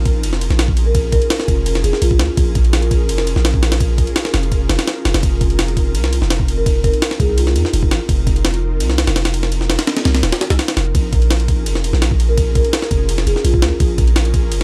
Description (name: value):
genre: drum and bass, jungle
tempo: 168 BPM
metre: 4/4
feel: straight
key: Bb minor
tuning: A4 = 438 Hz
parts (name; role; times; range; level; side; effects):
- ethereal airy pad; sustained chords; 0.0-14.6 s; C4 to Bb4; -28 LUFS; equal; ensemble chorus, built-in reverb
- long sustained 808-style bass; bass; 0.0-14.6 s; Eb1 to F2; -19 LUFS; equal; none
- jungle sampler-style drum kit; drums; 0.1-14.6 s; kick drum, ride cymbal, snare drum; -19 LUFS; equal; none
- marimba with soft mallets; melody; 0.9-2.5, 6.6-7.9, 12.3-13.9 s; F4 to Bb4; -25 LUFS; equal; vintage 12-bit sampler grit, dub echo
room: little or no reverb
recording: dry, gritty hardware recording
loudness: -16 LUFS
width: mono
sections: 0.0-14.6 A section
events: none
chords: 0.0 Bbm7; 5.2 F7sus4; 10.9 Bbm7